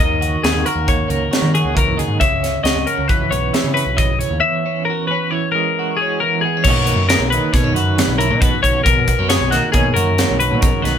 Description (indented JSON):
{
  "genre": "math rock and midwest emo",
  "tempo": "135 BPM",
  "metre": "5/4",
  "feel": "straight",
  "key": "unclear",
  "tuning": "A4 = 440 Hz",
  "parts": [
    { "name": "twelve-string electric guitar", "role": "accompaniment", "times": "0.0-11.0 s", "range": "E2 to G#4", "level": "-21 LUFS", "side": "right 6 dB", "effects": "tremolo" },
    { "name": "twelve-string electric guitar", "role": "arpeggios", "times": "0.0-11.0 s", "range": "F#4 to E5", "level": "-19 LUFS", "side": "left 5 dB", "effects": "none" },
    { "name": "growling picked electric bass", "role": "bass", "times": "0.0-11.0 s", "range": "B1 to D#3", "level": "-20 LUFS", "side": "equal", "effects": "overdrive" },
    { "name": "crisp fusion drum kit", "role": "drums", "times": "0.2-11.0 s", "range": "crash cymbal, hi-hat, kick drum, snare drum", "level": "-18 LUFS", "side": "equal", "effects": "none" }
  ],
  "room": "light reverb",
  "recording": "band playing live in one room",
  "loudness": "-14 LUFS",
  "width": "side -8 dB against mid",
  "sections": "0.0-6.6 A section; 6.6-11.0 B section",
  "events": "none",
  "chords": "0.0 D#m7; 2.2 C#m7; 4.4 E69; 6.6 Bmaj9",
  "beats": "0.43 0.88 1.32 1.76 | 2.21 2.65 3.09 3.54 3.98 | 4.42 4.87 5.31 5.75 6.20 | 6.64 7.08 7.52 7.97 8.41 | 8.85 9.29 9.74 10.18 10.62"
}